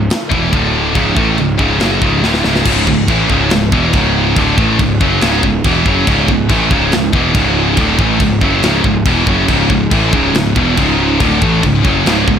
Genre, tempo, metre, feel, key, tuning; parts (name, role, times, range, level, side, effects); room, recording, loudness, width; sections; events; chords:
heavy metal; 140 BPM; 4/4; straight; C# minor; A4 = 441 Hz
heavy high-gain guitar; riff; 0.0-12.4 s; C#2 to A3; -15 LUFS; left 10 dB; distortion
scooped high-gain guitar; riff; 0.0-12.4 s; C#2 to A3; -16 LUFS; right 11 dB; distortion
fuzz picked electric bass; bass; 0.0-12.4 s; C#1 to A1; -17 LUFS; equal; overdrive
tight metal drum kit; drums; 0.1-12.4 s; china cymbal, crash cymbal, kick drum, snare drum; -17 LUFS; equal
thick fuzz guitar; riff; 9.5-12.4 s; C#2 to A3; -18 LUFS; left 1 dB; distortion
small room reverb; -10 LUFS; side -8 dB against mid
0.0-2.7 A section; 2.7-12.4 B section
drum fill 2.2-2.7
0.0 C#m; 0.5 D5; 1.0 C#m